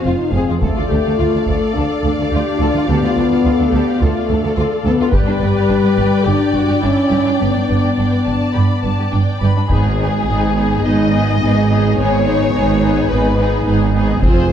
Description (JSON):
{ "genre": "cinematic, epic orchestral film score", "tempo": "106 BPM", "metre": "4/4", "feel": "straight", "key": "unclear", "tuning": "A4 = 440 Hz", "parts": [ { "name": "warm symphonic violin section", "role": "melody", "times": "0.0-14.5 s", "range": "G#4 to B5", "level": "-24 LUFS", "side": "left 5 dB", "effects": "none" }, { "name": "clear symphonic violin section", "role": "second line", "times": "0.0-14.5 s", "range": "B3 to D5", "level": "-24 LUFS", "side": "left 2 dB", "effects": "none" }, { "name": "warm symphonic viola section", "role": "accompaniment", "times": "0.0-14.5 s", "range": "B3 to B4", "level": "-22 LUFS", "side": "right 1 dB", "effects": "none" }, { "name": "warm French horn section", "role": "sustained chords", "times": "0.0-14.5 s", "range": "G3 to F4", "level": "-18 LUFS", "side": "left 3 dB", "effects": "none" }, { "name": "rich symphonic cello section", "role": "bass", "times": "0.1-14.5 s", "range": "D2 to G#2", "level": "-20 LUFS", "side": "right 3 dB", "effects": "none" }, { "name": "rich symphonic double bass section", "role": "bass", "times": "0.1-14.5 s", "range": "F1 to D2", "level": "-19 LUFS", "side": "right 2 dB", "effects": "none" }, { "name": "taiko ensemble", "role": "drums", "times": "0.6-6.2, 9.7-10.8, 14.2-14.5 s", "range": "none", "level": "-18 LUFS", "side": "equal", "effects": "none" } ], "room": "moderate scoring stage reverb, RT60 1.7 s", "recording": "dark, warm production", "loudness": "-13 LUFS", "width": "side -9 dB against mid", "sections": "0.0-9.7 A section; 9.7-14.5 A section", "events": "none", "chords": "0.0 Fm; 0.6 Dm; 5.1 G; 9.7 G#m", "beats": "0.05 | 0.62 1.19 1.76 2.33 | 2.89 3.45 4.01 4.58 | 5.13 5.69 6.25 6.82 | 7.40 7.97 8.55 9.13 | 9.70 10.27 10.85 11.41 | 11.97 12.54 13.10 13.66 | 14.22" }